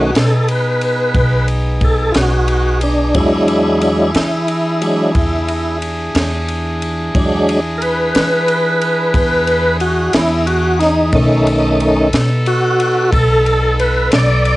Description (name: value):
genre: slow blues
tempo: 60 BPM (dotted quarters)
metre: 12/8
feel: straight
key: unclear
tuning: A4 = 440 Hz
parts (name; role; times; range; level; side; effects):
- tonewheel organ; sustained chords; 0.0-14.6 s; D#3 to D5; -14 LUFS; equal; slow rotary speaker, overdrive, chorus vibrato, cassette tape
- warm horn section; sustained chords; 0.0-14.6 s; B3 to A4; -23 LUFS; equal; cassette tape
- upright bass; bass; 0.0-14.6 s; B1 to E3; -18 LUFS; equal; none
- compact cocktail drum kit; drums; 0.2-14.6 s; kick drum, ride cymbal, snare drum; -20 LUFS; equal; cassette tape
room: light reverb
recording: home recording on cassette, nothing above 10.6 kHz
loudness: -12 LUFS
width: side -18 dB against mid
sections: 0.0-14.6 A section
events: tonewheel organ solo 0.0-14.6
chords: 0.0 B7; 3.2 E7; 11.1 B7